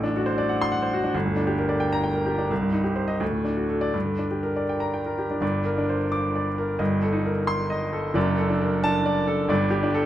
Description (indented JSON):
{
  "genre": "classical, virtuoso piano study",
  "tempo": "80-90 BPM (dotted quarters)",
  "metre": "6/8",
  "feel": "rubato",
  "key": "G minor",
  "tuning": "A4 = 440 Hz",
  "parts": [
    { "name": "clear baby grand piano", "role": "solo", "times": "0.0-10.1 s", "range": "F#1 to D6", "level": "-22 LUFS", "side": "equal", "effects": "none" }
  ],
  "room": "moderate recital hall reverb, RT60 1.5 s",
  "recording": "close, detailed microphones",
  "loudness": "-22 LUFS",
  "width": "side -12 dB against mid",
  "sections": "0.0-5.4 A section; 5.4-10.1 A section",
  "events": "none",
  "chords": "0.0 D7/A; 1.1 Gm; 2.5 Cm; 3.2 D; 3.9 Gm; 6.8 Am7b5/G; 8.2 D/F#; 9.5 G5"
}